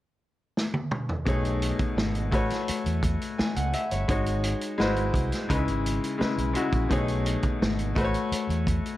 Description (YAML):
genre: lush 1970s-style soul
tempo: 85 BPM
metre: 4/4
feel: straight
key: unclear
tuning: A4 = 435 Hz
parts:
  - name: vintage drum kit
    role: drums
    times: 0.6-9.0 s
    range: hi-hat, kick drum, snare drum, toms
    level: -29 LUFS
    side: equal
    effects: none
  - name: bright baby grand piano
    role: accompaniment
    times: 1.3-9.0 s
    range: B2 to G#5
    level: -28 LUFS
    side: left 2 dB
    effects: none
  - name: overdriven fingered electric bass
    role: bass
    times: 1.3-8.8 s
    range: G1 to E2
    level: -29 LUFS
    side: right 1 dB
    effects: none
room: light reverb, small room ambience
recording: dark, warm production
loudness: -24 LUFS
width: side -15 dB against mid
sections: 0.0-1.3 A section; 1.3-9.0 B section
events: drum fill 0.6-1.3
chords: 0.0 N.C.; 1.3 B13; 2.3 A69; 4.1 G#7sus4; 4.8 G#7alt; 5.5 C#m7; 6.9 B13; 8.0 A69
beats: 0.56 | 1.27 1.97 2.68 3.38 | 4.09 4.79 5.50 6.20 | 6.91 7.62 8.32